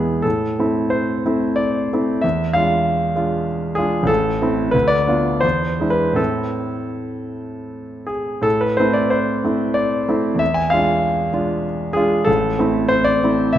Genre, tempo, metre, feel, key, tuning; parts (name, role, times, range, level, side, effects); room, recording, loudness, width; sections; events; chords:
classical, romantic character piece for solo piano; 76-100 BPM; 3/4; rubato; A minor; A4 = 436 Hz
clear concert grand piano; solo; 0.0-13.6 s; A1 to G#5; -16 LUFS; equal
moderate concert hall reverb, RT60 2.2 s; -16 LUFS; side -11 dB against mid
0.0-8.4 A section; 8.4-13.6 A section
0.2 Am; 2.2 E7b9; 4.1 Am; 4.7 Bdim/D; 5.4 E7; 6.2 Am; 10.4 E7b9; 12.3 Am